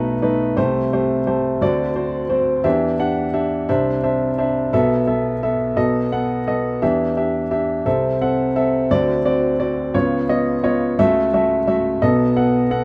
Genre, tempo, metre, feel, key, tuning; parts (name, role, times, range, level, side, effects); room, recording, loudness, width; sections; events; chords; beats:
folk; 58 BPM (dotted quarters); 6/8; straight; A4 = 439 Hz
warm grand piano; solo; 0.0-12.8 s; B1 to F#5; -19 LUFS; equal
light reverb; -19 LUFS; mono
0.0-12.8 A section
0.0 B7; 0.6 Am7/C; 1.6 D7; 2.6 Em7; 3.7 Cadd9; 4.7 B7sus4; 5.8 B7; 6.8 Em7; 7.9 C6; 8.9 D7; 9.9 C#7; 11.0 F#m7/C#; 12.0 B7
| 0.58 1.61 | 2.65 3.69 | 4.73 5.77 | 6.82 7.86 | 8.90 9.94 | 10.98 12.02